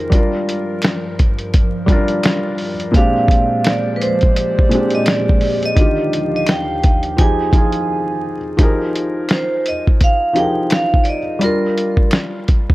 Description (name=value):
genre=lo-fi hip hop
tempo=85 BPM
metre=4/4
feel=swing 63% on 16ths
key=F dorian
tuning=A4 = 438 Hz
part: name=vibraphone with hard mallets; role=melody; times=0.0-12.1 s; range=Bb4 to Ab5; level=-20 LUFS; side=right 2 dB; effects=low-pass filter, analog delay
part: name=felt-muted upright piano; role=accompaniment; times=0.0-12.7 s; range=Bb2 to C5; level=-19 LUFS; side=left 1 dB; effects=cassette tape, low-pass filter
part: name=warbly tape-like pad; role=sustained chords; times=0.0-8.6 s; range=Eb2 to Ab5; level=-26 LUFS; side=equal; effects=chorus, built-in reverb, phaser, low-pass filter
part: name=lo-fi sampler-style drum kit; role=drums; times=0.1-12.7 s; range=hi-hat, kick drum, snare drum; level=-14 LUFS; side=equal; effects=vintage 12-bit sampler grit
part: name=finger snap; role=percussion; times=0.8-12.3 s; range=none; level=-30 LUFS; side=left 3 dB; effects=none
room=little or no reverb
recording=dry, gritty hardware recording, transformer saturation, vinyl crackle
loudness=-14 LUFS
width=side -18 dB against mid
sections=0.0-8.6 A section; 8.6-12.7 B section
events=break 7.9-8.6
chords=0.1 Gm7; 2.9 Bb13; 5.8 Ebmaj9; 7.2 Fm9; 8.6 Fm11; 11.4 Gm7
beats=| 0.12 0.82 1.53 2.24 | 2.94 3.65 4.35 5.06 | 5.77 6.47 7.18 7.88 | 8.59 9.29 10.00 10.71 | 11.41 12.12